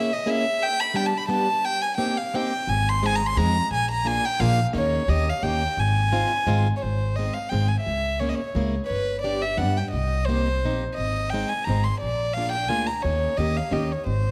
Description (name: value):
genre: musette waltz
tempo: 174 BPM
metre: 3/4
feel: swing 55% on 8ths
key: Ab major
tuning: A4 = 440 Hz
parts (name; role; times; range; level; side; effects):
- warm violin; melody; 0.0-14.3 s; B4 to C6; -27 LUFS; equal; none
- picked plugged-in swing-style acoustic guitar; accompaniment; 0.0-13.9 s; G3 to Ab4; -31 LUFS; equal; none
- upright bass; bass; 2.7-14.3 s; G1 to G2; -27 LUFS; equal; none
room: moderate concert hall reverb, RT60 1.9 s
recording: none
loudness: -24 LUFS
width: mono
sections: 0.0-6.8 A section; 6.8-14.3 A section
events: none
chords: 0.0 Dbm6; 0.6 G; 1.6 Cm7; 2.7 Ab; 3.7 Bb7; 4.7 Eb7sus4; 5.1 Eb7; 5.8 Ab6; 6.8 Ab; 7.9 Dbm6; 8.9 G; 9.9 Cm7; 11.0 Ab; 12.0 Bb7; 13.0 Eb7sus4; 13.4 Eb7